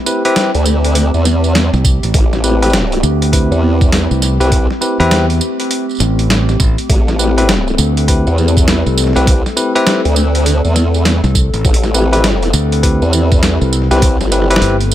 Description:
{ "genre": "glitch hop", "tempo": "101 BPM", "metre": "4/4", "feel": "swing 63% on 16ths", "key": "A minor", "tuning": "A4 = 437 Hz", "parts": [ { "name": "warbly tape-like pad", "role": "sustained chords", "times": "0.0-14.9 s", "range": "A3 to A4", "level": "-20 LUFS", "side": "equal", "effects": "chorus, built-in reverb, vintage 12-bit sampler grit, sidechain pumping" }, { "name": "bell-like tine electric piano", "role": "stabs", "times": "0.1-14.8 s", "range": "C4 to B4", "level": "-17 LUFS", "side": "left 1 dB", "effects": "vintage 12-bit sampler grit, sidechain pumping, ping-pong delay" }, { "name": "boom bap sampler-style drum kit", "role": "drums", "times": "0.1-14.9 s", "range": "hi-hat, snare drum, tambourine", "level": "-18 LUFS", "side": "right 1 dB", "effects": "none" }, { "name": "formant-sweep wobble bass", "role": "bass", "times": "0.5-14.6 s", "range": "G1 to E2", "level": "-13 LUFS", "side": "equal", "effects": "chorus" }, { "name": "modern bright fingered electric bass", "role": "bass", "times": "1.7-14.9 s", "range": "G1 to E2", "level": "-14 LUFS", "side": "equal", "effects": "none" }, { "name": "electronic kick drum", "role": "drums", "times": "1.8-14.2 s", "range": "none", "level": "-13 LUFS", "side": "equal", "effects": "none" } ], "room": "digital ambience", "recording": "none", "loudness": "-10 LUFS", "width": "side -12 dB against mid", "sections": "0.0-14.9 A section", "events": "none", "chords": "0.0 Am9" }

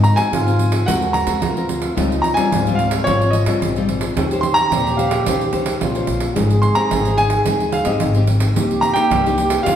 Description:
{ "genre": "samba and choro", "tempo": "109 BPM", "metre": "4/4", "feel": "straight", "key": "unclear", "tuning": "A4 = 440 Hz", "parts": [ { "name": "warm concert grand piano", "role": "melody", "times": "0.0-9.8 s", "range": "Db5 to C6", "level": "-19 LUFS", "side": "equal", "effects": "none" }, { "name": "breathy trombone", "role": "second line", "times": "0.0-9.8 s", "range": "Eb4 to Ab4", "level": "-23 LUFS", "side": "right 2 dB", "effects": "none" }, { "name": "nylon-string guitar", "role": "accompaniment", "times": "0.0-9.8 s", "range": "F2 to C5", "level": "-22 LUFS", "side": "left 3 dB", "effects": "none" }, { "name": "pandeiro", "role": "percussion", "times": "0.0-9.8 s", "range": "none", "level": "-23 LUFS", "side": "right 4 dB", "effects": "none" }, { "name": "upright bass", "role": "bass", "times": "0.3-9.8 s", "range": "Ab1 to Ab3", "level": "-21 LUFS", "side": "equal", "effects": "none" } ], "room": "wet recital hall reverb, RT60 1.3 s", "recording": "recorded in a church or concert hall", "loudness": "-15 LUFS", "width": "side -9 dB against mid", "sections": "0.0-9.8 A section", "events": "none", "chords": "0.0 Ab9; 2.0 Dbmaj9#11; 4.2 Eb13; 6.4 Abmaj7; 8.6 Cm7" }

